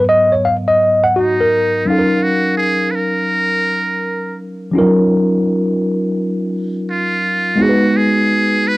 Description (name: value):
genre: hip hop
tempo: 84 BPM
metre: 4/4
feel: swing 64% on 16ths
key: Eb minor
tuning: A4 = 440 Hz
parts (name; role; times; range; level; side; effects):
- mellow tine electric piano; accompaniment; 0.0-8.8 s; Ab2 to Gb5; -14 LUFS; equal; medium stereo tremolo, plate reverb
- trumpet with metal mute; melody; 1.2-8.8 s; Eb4 to Cb5; -17 LUFS; right 1 dB; none
room: wet booth ambience, RT60 0.2 s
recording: home recording on cassette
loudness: -13 LUFS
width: side -19 dB against mid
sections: 0.0-1.9 A section; 1.9-8.8 B section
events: tine electric piano solo 0.0-1.9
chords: 0.0 Abm9; 1.9 Ebm9; 7.6 Abm7